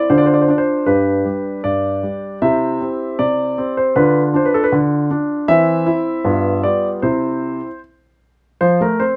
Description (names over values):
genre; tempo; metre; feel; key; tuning
classical-period piano sonatina; 78 BPM; 2/4; straight; C major; A4 = 441 Hz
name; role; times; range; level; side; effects
warm concert grand piano; solo; 0.0-9.2 s; G2 to E5; -17 LUFS; equal; none
room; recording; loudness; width
light reverb; faint mains hum; -17 LUFS; mono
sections
0.0-8.6 A section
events
none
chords
0.1 Dm; 0.9 G; 2.4 C; 4.0 Dm6; 5.5 C/E; 6.2 G7; 7.0 C; 8.6 F